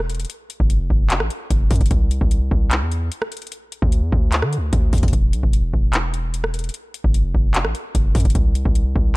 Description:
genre	hip hop, trap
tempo	149 BPM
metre	4/4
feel	half-time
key	unclear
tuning	A4 = 441 Hz
part	hard-hitting 808-style bass	bass	0.0-9.2 s	E1 to D3	-20 LUFS	equal	none
part	booming analog drum machine	drums	0.0-9.1 s	handclaps, hi-hat, kick drum, rim click	-18 LUFS	equal	none
room	digital ambience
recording	dark, warm production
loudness	-17 LUFS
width	side -23 dB against mid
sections	0.0-9.2 A section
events	none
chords	none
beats	| 0.30 0.70 1.10 1.50 | 1.91 2.31 2.71 3.12 | 3.52 3.92 4.32 4.73 | 5.13 5.53 5.93 6.34 | 6.74 7.14 7.55 7.95 | 8.35 8.75 9.16

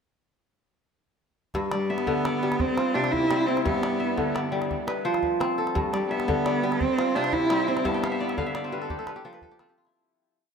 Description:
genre	west african traditional, West African string and xylophone music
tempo	114 BPM (dotted quarters)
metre	12/8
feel	straight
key	G mixolydian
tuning	A4 = 439 Hz
part	kora	arpeggios	1.5-10.5 s	G2 to A5	-26 LUFS	left 2 dB	ping-pong delay
part	calabash	percussion	1.5-9.9 s	none	-34 LUFS	right 1 dB	none
part	clear cello	melody	1.7-8.6 s	G3 to E4	-26 LUFS	right 2 dB	ping-pong delay
room	wet plate reverb, RT60 3.6 s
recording	dreamy mix soaked in reverb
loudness	-23 LUFS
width	side -6 dB against mid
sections	1.5-10.0 A section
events	fade-out 7.8-10.0; kora fill 7.8-10.0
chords	1.5 G; 2.6 C; 3.6 G; 4.7 F; 5.8 G; 6.8 C; 7.8 G; 8.9 F5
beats	| 1.54 2.07 2.59 3.12 | 3.65 4.17 4.70 5.23 | 5.75 6.28 6.80 7.33 | 7.85 8.38 8.90 9.43

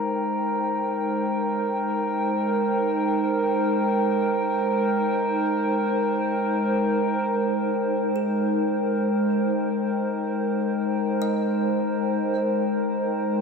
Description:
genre	ambient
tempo	free time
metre	none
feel	none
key	Ab major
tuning	A4 = 441 Hz
part	warbly tape-like pad	sustained chords	0.0-13.4 s	Ab3 to G5	-22 LUFS	equal	chorus, built-in reverb
part	glass harmonica	texture	0.0-13.4 s	Bb4 to Bb5	-30 LUFS	left 1 dB	none
part	kalimba	arpeggios	8.2-12.4 s	Ab4 to Eb5	-44 LUFS	right 3 dB	diffuse ambient delay
room	wet cathedral reverb, RT60 5.0 s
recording	none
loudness	-22 LUFS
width	side -5 dB against mid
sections	0.0-7.4 A section; 7.4-13.4 B section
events	fade-in on kalimba 7.4-13.4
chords	0.0 Abmaj9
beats	free time

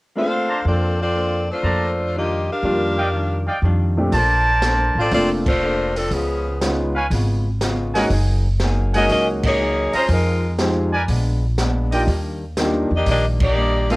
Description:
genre	jazz, big band swing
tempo	121 BPM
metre	4/4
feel	swing 69% on 8ths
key	Bb major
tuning	A4 = 440 Hz
part	warm saxophone section	melody	0.2-14.0 s	F3 to F5	-20 LUFS	left 1 dB	cassette tape
part	archtop guitar, miked and amplified	accompaniment	0.2-13.9 s	Bb2 to C5	-28 LUFS	left 2 dB	none
part	clear concert grand piano	accompaniment	0.2-14.0 s	Bb2 to A4	-22 LUFS	equal	none
part	clear trumpet section	stabs	0.5-14.0 s	A4 to Bb5	-21 LUFS	right 1 dB	none
part	upright bass	bass	0.6-14.0 s	F1 to F2	-21 LUFS	equal	none
part	open jazz drum kit	drums	4.1-14.0 s	crash cymbal, hi-hat, kick drum, snare drum	-26 LUFS	equal	none
room	light reverb, small room ambience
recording	home recording on cassette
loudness	-17 LUFS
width	side -22 dB against mid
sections	0.2-4.1 A section; 4.1-14.0 B section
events	band accent 5.4, 9.3, 13.3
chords	0.2 Bbmaj9; 2.1 Ebmaj9; 4.1 Bbmaj9; 6.1 Db7; 8.1 Gb69; 10.1 Fm7; 11.1 Bb7b9; 12.1 Ebmaj7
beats	| 0.15 0.65 1.15 1.65 | 2.14 2.64 3.14 3.63 | 4.13 4.63 5.13 5.62 | 6.12 6.62 7.11 7.61 | 8.11 8.60 9.10 9.60 | 10.09 10.59 11.08 11.58 | 12.07 12.57 13.07 13.56

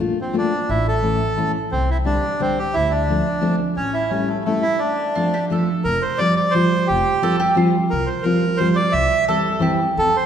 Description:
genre	musette waltz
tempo	174 BPM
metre	3/4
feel	straight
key	D minor, F major from 5.8 s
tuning	A4 = 440 Hz
part	fingerpicked steel-string acoustic guitar	accompaniment	0.0-9.8 s	D3 to F4	-21 LUFS	left 1 dB	none
part	upright bass	bass	0.0-10.1 s	F1 to F2	-26 LUFS	equal	none
part	bandoneon	melody	0.2-10.3 s	A3 to E5	-20 LUFS	right 2 dB	none
part	mandolin	second line	5.2-9.9 s	F4 to A4	-23 LUFS	right 1 dB	none
room	wet concert hall reverb, RT60 1.9 s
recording	recorded in a church or concert hall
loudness	-17 LUFS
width	side -8 dB against mid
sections	0.0-5.8 A section; 5.8-10.3 B section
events	none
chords	0.0 Bbmaj7; 0.7 A; 1.7 Csus2; 2.7 Dm7; 3.8 A7; 4.8 Dm7; 5.8 Fsus2; 7.9 Csus4; 8.9 C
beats	0.33 | 0.67 1.02 1.36 | 1.71 2.06 2.40 | 2.75 3.09 3.43 | 3.77 4.11 4.45 | 4.80 5.15 5.50 | 5.85 6.20 6.54 | 6.89 7.23 7.57 | 7.91 8.25 8.59 | 8.94 9.28 9.62 | 9.97

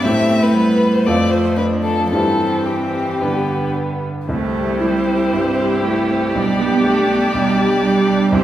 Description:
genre	quick classical-period movement for piano quintet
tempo	109-122 BPM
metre	4/4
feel	rubato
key	C major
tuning	A4 = 441 Hz
part	rich violin	melody	0.0-8.4 s	G4 to E5	-22 LUFS	left 4 dB	none
part	clear cello	second line	0.0-8.4 s	D3 to C4	-21 LUFS	right 4 dB	none
part	rich violin	second line	0.0-8.4 s	A3 to G4	-24 LUFS	equal	none
part	bright grand piano	accompaniment	0.0-8.4 s	B1 to G4	-18 LUFS	equal	none
part	rich viola	accompaniment	4.3-8.4 s	D4 to E4	-26 LUFS	right 2 dB	none
room	wet recital hall reverb, RT60 1.7 s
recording	heard from further back in the room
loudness	-14 LUFS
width	side -12 dB against mid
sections	0.0-4.3 A section; 4.3-8.4 B section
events	none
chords	0.0 Am; 1.1 Dm7/F; 2.1 C/G; 3.2 G; 4.3 C; 6.3 G/B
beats	| 0.04 0.54 1.06 1.58 | 2.12 2.67 3.21 3.75 | 4.29 4.81 5.33 5.84 | 6.34 6.83 7.33 7.84 | 8.34

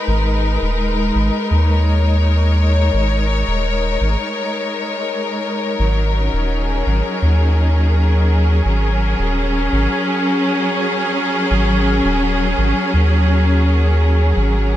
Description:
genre	ambient dub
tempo	84 BPM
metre	4/4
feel	straight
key	unclear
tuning	A4 = 441 Hz
part	rich studio string section	sustained chords	0.0-14.8 s	F#3 to C#5	-18 LUFS	left 1 dB	none
part	soft dub sub bass	bass	0.1-14.8 s	D#1 to D#2	-15 LUFS	equal	none
room	light reverb, small room ambience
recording	none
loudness	-14 LUFS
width	side -13 dB against mid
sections	0.0-14.8 A section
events	none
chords	0.0 G#m; 5.8 F#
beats	| 0.08 0.79 1.51 2.22 | 2.93 3.65 4.36 5.08 | 5.79 6.51 7.22 7.93 | 8.65 9.36 10.08 10.79 | 11.51 12.22 12.93 13.65 | 14.36

